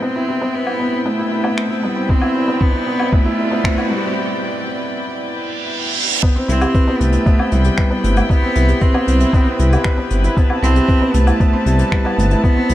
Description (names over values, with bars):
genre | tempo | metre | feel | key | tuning
piano and strings electronica | 116 BPM | 4/4 | straight | C major | A4 = 440 Hz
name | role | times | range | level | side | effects
rich cello | melody | 0.0-12.7 s | G3 to C4 | -20 LUFS | equal | none
clear studio string section | sustained chords | 0.0-12.7 s | E4 to A5 | -25 LUFS | equal | sidechain pumping, low-pass filter
felt-muted upright piano | riff | 0.0-12.7 s | B3 to B4 | -21 LUFS | equal | none
riser and reverse cymbal | sound effects | 1.6-6.2 s | none | -25 LUFS | right 3 dB | none
dark detuned saw bass | bass | 0.3-12.7 s | G1 to C2 | -16 LUFS | equal | sidechain pumping, high-pass filter
jazz brush drum kit | drums | 0.7-12.7 s | finger snaps, hi-hat, woodblock | -27 LUFS | left 1 dB | none
electronic kick drum | drums | 2.1-12.5 s | none | -15 LUFS | equal | none
room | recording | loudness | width
light reverb, small room ambience | none | -14 LUFS | side -14 dB against mid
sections
0.0-6.2 A section; 6.2-12.7 B section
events
build-up 0.0-6.2; riser 1.6-4.2; break 4.2-6.2; reverse cymbal 5.4-6.2; drop 6.2-12.7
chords
0.0 Cmaj7